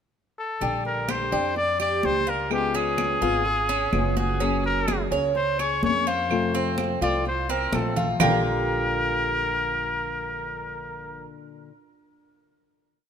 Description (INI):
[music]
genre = latin, Cuban son and guajira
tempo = 126 BPM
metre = 4/4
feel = straight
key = Bb major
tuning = A4 = 445 Hz
[part]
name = clear trumpet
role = melody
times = 0.4-11.3 s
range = G4 to D5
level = -26 LUFS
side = left 2 dB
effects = none
[part]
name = nylon-string guitar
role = accompaniment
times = 0.6-11.7 s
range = Bb2 to Ab4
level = -30 LUFS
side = left 6 dB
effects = none
[part]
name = Cuban tres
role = arpeggios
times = 0.6-11.3 s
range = Bb3 to D5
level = -28 LUFS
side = right 4 dB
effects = none
[part]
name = upright bass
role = bass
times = 0.6-11.2 s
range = Gb1 to F2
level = -31 LUFS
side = right 1 dB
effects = none
[part]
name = congas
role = percussion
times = 0.6-8.3 s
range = none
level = -29 LUFS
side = equal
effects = none
[part]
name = claves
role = percussion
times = 1.1-8.3 s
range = none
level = -32 LUFS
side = right 12 dB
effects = none
[sound]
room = moderate plate reverb, RT60 3.2 s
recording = minimal, uncompressed stereo recording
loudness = -22 LUFS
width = side -8 dB against mid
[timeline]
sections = 0.0-0.6 pickup bar; 0.6-8.2 verse; 8.2-12.0 final chord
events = drum fill 7.7-8.2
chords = 0.0 N.C.; 0.6 Bb6; 2.5 Db7; 4.4 Gbadd9; 6.3 F; 8.2 Bb6